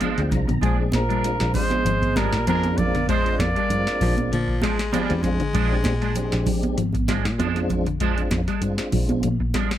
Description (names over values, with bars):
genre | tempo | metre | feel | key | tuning
afrobeat | 98 BPM | 4/4 | swing 54% on 16ths | Bb mixolydian | A4 = 441 Hz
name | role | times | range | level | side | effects
mellow tonewheel organ | accompaniment | 0.0-9.3 s | Ab3 to Bb5 | -29 LUFS | left 2 dB | chorus vibrato, fast rotary speaker
semi-hollow electric guitar | arpeggios | 0.0-9.8 s | D3 to Ab3 | -30 LUFS | left 9 dB | spring reverb
clean electric guitar | stabs | 0.0-9.8 s | F3 to D4 | -30 LUFS | right 10 dB | ensemble chorus, slapback echo
fingered electric bass | bass | 0.0-9.5 s | Ab1 to Bb2 | -25 LUFS | equal | none
booming analog drum machine | drums | 0.0-9.8 s | hi-hat, kick drum, snare drum | -26 LUFS | equal | none
congas | percussion | 0.0-9.7 s | none | -28 LUFS | right 5 dB | none
warm trumpet | melody | 0.6-4.6 s | Ab4 to D5 | -25 LUFS | equal | none
growling tenor saxophone | second line | 0.6-4.6 s | F3 to Bb3 | -31 LUFS | right 5 dB | none
raspy baritone saxophone | second line | 4.0-6.5 s | F3 to Ab3 | -29 LUFS | left 4 dB | none
room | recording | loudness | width
small room ambience | none | -20 LUFS | side -12 dB against mid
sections
0.0-9.8 A section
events
tonewheel organ fill 0.0-0.6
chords
0.0 Bb7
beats
0.01 | 0.63 1.24 1.86 2.47 | 3.09 3.70 4.32 4.93 | 5.55 6.16 6.78 7.39 | 8.01 8.63 9.24